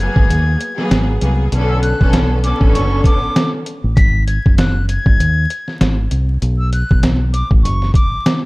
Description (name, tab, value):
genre	hip hop, boom-bap hip-hop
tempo	98 BPM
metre	4/4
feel	swing 57% on 16ths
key	unclear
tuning	A4 = 440 Hz
part	breathy silver concert flute	melody	0.0-8.4 s	C#6 to B6	-23 LUFS	left 1 dB	high-pass filter, low-pass filter
part	bright studio string section	accompaniment	0.0-3.6 s	D3 to A4	-20 LUFS	equal	cassette tape, high-pass filter, low-pass filter
part	deep dub fingered electric bass	bass	0.0-7.9 s	F#1 to D#2	-16 LUFS	equal	none
part	trip hop sampler-style drum kit	drums	0.2-8.4 s	hi-hat, kick drum, snare drum	-14 LUFS	equal	none
room	small room ambience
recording	dark, warm production, vinyl crackle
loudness	-12 LUFS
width	side -23 dB against mid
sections	0.0-8.5 A section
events	none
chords	0.0 G#m9; 1.5 Bm9; 4.0 G#5; 6.4 B5